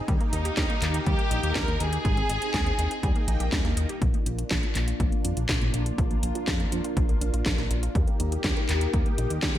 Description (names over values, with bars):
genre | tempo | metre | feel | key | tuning
italo disco | 122 BPM | 4/4 | straight | unclear | A4 = 440 Hz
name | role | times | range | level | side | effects
string machine, full ensemble | sustained chords | 0.0-9.6 s | Bb3 to G5 | -33 LUFS | equal | phaser, ensemble chorus
analog pluck | arpeggios | 0.0-9.6 s | F3 to Ab4 | -37 LUFS | right 2 dB | chorus, ping-pong delay
chorused synth bass | bass | 0.1-9.6 s | Ab1 to F2 | -28 LUFS | equal | none
electronic kick drum | drums | 0.1-9.5 s | none | -27 LUFS | equal | overdrive
house drum kit | drums | 0.1-9.6 s | handclaps, hi-hat, snare drum | -31 LUFS | equal | overdrive, gated reverb
rich studio violin section | melody | 0.3-3.5 s | Eb4 to Bb4 | -30 LUFS | left 1 dB | ping-pong delay
room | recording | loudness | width
digital ambience | none | -23 LUFS | side -12 dB against mid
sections
0.0-4.0 A section; 4.0-9.6 B section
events
none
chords
0.1 Eb; 2.0 Ab; 3.0 Eb; 4.0 Bb; 8.0 Eb